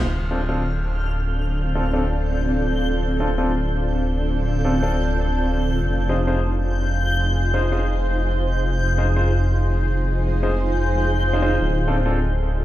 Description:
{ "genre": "drum and bass", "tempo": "166 BPM", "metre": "4/4", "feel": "straight", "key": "D phrygian", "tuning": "A4 = 439 Hz", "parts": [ { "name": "granular cloud pad", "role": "sustained chords", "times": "1.1-12.6 s", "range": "C4 to C5", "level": "-25 LUFS", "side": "right 1 dB", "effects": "built-in reverb" }, { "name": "dark detuned saw bass", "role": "bass", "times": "0.0-12.6 s", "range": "D1 to F1", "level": "-21 LUFS", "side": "equal", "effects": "none" }, { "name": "backwards swelling texture", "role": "texture", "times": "0.0-12.6 s", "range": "F6 to G6", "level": "-30 LUFS", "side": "left 2 dB", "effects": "built-in reverb" }, { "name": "clear concert grand piano", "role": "stabs", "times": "0.3-12.2 s", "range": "C4 to C5", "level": "-27 LUFS", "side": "left 1 dB", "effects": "low-pass filter, dub echo" } ], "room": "light reverb, small room ambience", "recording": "played on a big sound system in a bare room, stone room reverb", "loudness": "-19 LUFS", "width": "side -14 dB against mid", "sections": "0.0-12.6 A section", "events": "none", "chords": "0.0 Dm7; 5.8 Fm7; 11.6 Dm7", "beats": "| 0.04 0.40 0.76 1.12 | 1.48 1.84 2.21 2.57 | 2.93 3.29 3.65 4.01 | 4.38 4.74 5.10 5.46 | 5.82 6.18 6.54 6.91 | 7.27 7.63 7.99 8.35 | 8.71 9.07 9.44 9.80 | 10.16 10.52 10.88 11.24 | 11.60 11.97 12.33" }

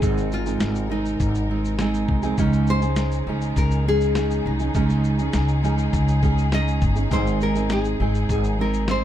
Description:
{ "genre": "acoustic pop", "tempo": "102 BPM", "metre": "4/4", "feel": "straight", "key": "Ab major", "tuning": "A4 = 440 Hz", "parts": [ { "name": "nylon-string guitar", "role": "melody", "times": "0.0-9.0 s", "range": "Eb4 to Eb5", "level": "-27 LUFS", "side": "left 3 dB", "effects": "none" }, { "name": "fingerpicked steel-string acoustic guitar", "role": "accompaniment", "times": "0.0-9.0 s", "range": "Ab2 to Ab4", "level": "-24 LUFS", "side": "right 4 dB", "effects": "none" }, { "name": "warm studio string section", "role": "sustained chords", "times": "0.0-9.0 s", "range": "C3 to Bb4", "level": "-33 LUFS", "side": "left 2 dB", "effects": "none" }, { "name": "upright bass", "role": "bass", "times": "0.0-9.0 s", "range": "G1 to Db2", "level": "-23 LUFS", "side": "left 1 dB", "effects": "none" }, { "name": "dusty soul sampler-style drum kit", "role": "drums", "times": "0.0-9.0 s", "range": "kick drum, shaker, snare drum", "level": "-26 LUFS", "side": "left 1 dB", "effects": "none" }, { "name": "dark upright piano", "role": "accompaniment", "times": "7.1-9.0 s", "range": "C4 to Ab4", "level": "-37 LUFS", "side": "left 6 dB", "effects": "none" } ], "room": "light reverb", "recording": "dark, warm production", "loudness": "-19 LUFS", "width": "side -11 dB against mid", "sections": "0.0-9.0 A section", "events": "none", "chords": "0.0 Ab; 2.4 Dbsus2; 7.1 Ab", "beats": "| 0.02 0.61 1.20 1.79 | 2.38 2.97 3.56 4.16 | 4.75 5.34 5.93 6.52 | 7.11 7.70 8.29 8.88" }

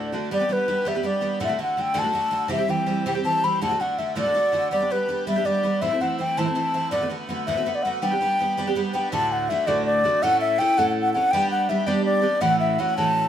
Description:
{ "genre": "celtic folk, Celtic jig", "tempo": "109 BPM (dotted quarters)", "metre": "6/8", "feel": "straight", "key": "G major, D major from 9.1 s", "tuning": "A4 = 440 Hz", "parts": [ { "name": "baroque flute", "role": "melody", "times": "0.0-13.3 s", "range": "B4 to B5", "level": "-22 LUFS", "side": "left 1 dB", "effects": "none" }, { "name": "picked twelve-string acoustic guitar", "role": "accompaniment", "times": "0.0-13.3 s", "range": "D2 to A4", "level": "-25 LUFS", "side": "right 2 dB", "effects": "none" } ], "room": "moderate small room reverb, RT60 0.5 s", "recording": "none", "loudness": "-20 LUFS", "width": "side -10 dB against mid", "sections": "0.3-9.1 A section; 9.1-13.3 B section", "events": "none", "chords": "0.3 G; 1.4 D; 2.5 C; 3.6 D; 4.7 G; 5.8 Am; 6.9 D6; 8.0 G; 9.1 D; 10.2 A; 11.3 G; 12.4 A6", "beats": "| 0.31 0.86 | 1.41 1.96 | 2.51 3.06 | 3.61 4.16 | 4.71 5.26 | 5.82 6.37 | 6.92 7.47 | 8.02 8.57 | 9.12 9.67 | 10.22 10.77 | 11.32 11.87 | 12.42 12.96" }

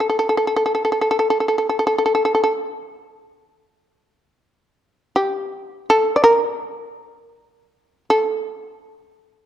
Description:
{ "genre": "japanese traditional, Japanese chamber music", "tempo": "free time", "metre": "none", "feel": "none", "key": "unclear", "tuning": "A4 = 439 Hz", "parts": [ { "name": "shamisen", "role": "solo", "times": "0.0-9.5 s", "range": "G4 to D5", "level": "-17 LUFS", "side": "equal", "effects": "none" } ], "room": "moderate concert hall reverb, RT60 1.7 s", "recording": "dark, warm production", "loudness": "-16 LUFS", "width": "side -11 dB against mid", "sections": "0.0-9.5 A section", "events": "none", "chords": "none", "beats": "free time" }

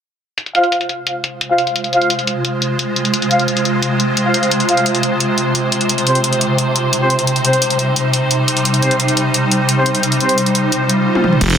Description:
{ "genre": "dark technical drum and bass", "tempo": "174 BPM", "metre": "4/4", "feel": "straight", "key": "F minor", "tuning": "A4 = 440 Hz", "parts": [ { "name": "swarming drone", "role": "sustained chords", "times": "1.4-11.6 s", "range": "C3 to C5", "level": "-16 LUFS", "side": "equal", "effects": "built-in reverb, sidechain pumping" }, { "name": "drum and bass drum kit", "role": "drums", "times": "0.4-11.6 s", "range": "crash cymbal, hi-hat, toms", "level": "-18 LUFS", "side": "left 1 dB", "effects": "low-pass filter on hats, low-pass filter on toms, low-pass filter on cymbals, low-pass filter on room" }, { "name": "mellow brass ensemble", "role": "stabs", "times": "0.5-10.4 s", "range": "C4 to F5", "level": "-18 LUFS", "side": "equal", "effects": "low-pass filter, digital delay" }, { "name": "swell", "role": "sound effects", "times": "10.9-11.4 s", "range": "none", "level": "-22 LUFS", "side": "equal", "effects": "none" }, { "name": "phased detuned saw bass", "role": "bass", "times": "11.4-11.6 s", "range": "F1", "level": "-13 LUFS", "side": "equal", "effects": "phaser, overdrive" }, { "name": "electronic kick drum", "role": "drums", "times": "11.4-11.5 s", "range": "none", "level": "-24 LUFS", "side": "equal", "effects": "none" } ], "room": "wet lush hall reverb, RT60 1.6 s, digital ambience", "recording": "dense, heavily limited modern master", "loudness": "-13 LUFS", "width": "side -8 dB against mid", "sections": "0.4-11.4 A section", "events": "swell 10.9-11.4; drum fill 11.2", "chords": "0.4 Fm; 5.9 Cm", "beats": "| 0.38 0.72 1.07 1.41 | 1.76 2.10 2.45 2.79 | 3.14 3.48 3.83 4.17 | 4.51 4.86 5.21 5.55 | 5.89 6.24 6.58 6.93 | 7.27 7.62 7.96 8.31 | 8.65 9.00 9.34 9.69 | 10.03 10.38 10.72 11.07 | 11.41" }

